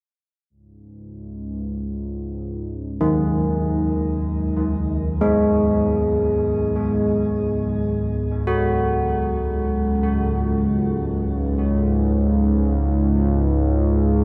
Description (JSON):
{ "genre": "dark ambient drone", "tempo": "free time", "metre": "none", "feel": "none", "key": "unclear", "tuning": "A4 = 442 Hz", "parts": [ { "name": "analog drone", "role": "drone", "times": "0.8-14.2 s", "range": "C#2 to G#2", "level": "-24 LUFS", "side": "equal", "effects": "chorus" }, { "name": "carillon bells", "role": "arpeggios", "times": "3.0-14.2 s", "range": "D#3 to F#4", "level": "-24 LUFS", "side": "equal", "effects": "tape echo, shimmer reverb" } ], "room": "wet cathedral reverb, RT60 6.2 s", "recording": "dark, warm production", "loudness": "-21 LUFS", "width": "mono", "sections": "0.5-14.2 A section", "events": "fade-in on synth drone 0.5-14.2", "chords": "0.5 C#sus2" }